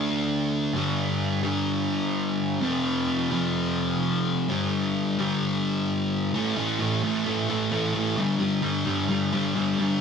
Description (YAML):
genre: rock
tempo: 129 BPM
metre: 4/4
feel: straight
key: unclear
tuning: A4 = 437 Hz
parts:
  - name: sludgy distorted guitar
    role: solo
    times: 0.0-10.0 s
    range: F2 to D4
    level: -23 LUFS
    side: left 1 dB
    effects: overdrive
room: moderate studio reverb, RT60 0.7 s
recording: band playing live in one room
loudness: -23 LUFS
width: side -6 dB against mid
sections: 0.0-6.3 A section; 6.3-10.0 B section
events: none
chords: 0.0 D5; 0.7 G5; 2.6 F5; 4.5 G5; 6.3 A5; 8.2 G5